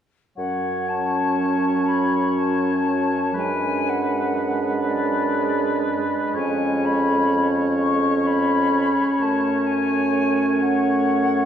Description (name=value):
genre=classical, slow romantic movement for wind quintet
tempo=41 BPM (dotted quarters)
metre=6/8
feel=uneven beats, rubato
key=F# minor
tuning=A4 = 438 Hz
part: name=silver concert flute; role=melody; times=0.4-11.5 s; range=D5 to C#6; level=-25 LUFS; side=left 5 dB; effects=none
part: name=warm oboe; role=second line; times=0.4-11.5 s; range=B4 to C#5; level=-27 LUFS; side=left 2 dB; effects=none
part: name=clear clarinet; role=accompaniment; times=0.4-11.5 s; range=C#4 to D4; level=-22 LUFS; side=right 2 dB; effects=none
part: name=warm French horn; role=accompaniment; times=0.4-11.5 s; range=F#3 to A3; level=-29 LUFS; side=right 2 dB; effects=none
part: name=warm bassoon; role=bass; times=0.4-11.5 s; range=E#2 to F#2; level=-26 LUFS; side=right 2 dB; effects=none
room=wet concert hall reverb, RT60 2.3 s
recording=heard from further back in the room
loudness=-18 LUFS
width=side -9 dB against mid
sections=0.4-11.5 A section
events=none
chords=0.4 F#m; 3.4 G#m7b5/F#; 6.4 C#7/E#; 9.2 F#m